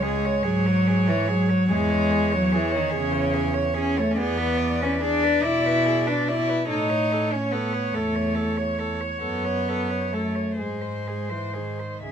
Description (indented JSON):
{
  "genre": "classical, lyrical piece for cello ensemble",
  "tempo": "40-49 BPM (dotted quarters)",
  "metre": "6/8",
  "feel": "rubato",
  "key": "C# minor",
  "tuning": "A4 = 440 Hz",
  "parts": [
    { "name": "dark cello", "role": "melody", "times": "0.0-12.1 s", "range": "B#4 to E5", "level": "-30 LUFS", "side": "left 3 dB", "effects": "none" },
    { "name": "warm cello", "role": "second line", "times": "0.0-12.1 s", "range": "G#4 to D5", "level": "-29 LUFS", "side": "right 5 dB", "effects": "none" },
    { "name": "warm cello", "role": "accompaniment", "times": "0.0-12.1 s", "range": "C#3 to E4", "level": "-24 LUFS", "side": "left 1 dB", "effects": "none" },
    { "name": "warm cello", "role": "bass", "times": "0.0-12.1 s", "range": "C#2 to B2", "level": "-29 LUFS", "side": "right 2 dB", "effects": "none" }
  ],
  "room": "light reverb",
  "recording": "close, detailed microphones",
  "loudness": "-21 LUFS",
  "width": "side -8 dB against mid",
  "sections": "0.0-12.1 A section",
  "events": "none",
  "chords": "0.0 C#5; 1.7 C#m/E; 4.2 E7; 6.7 A; 9.2 F#madd11; 10.6 G#"
}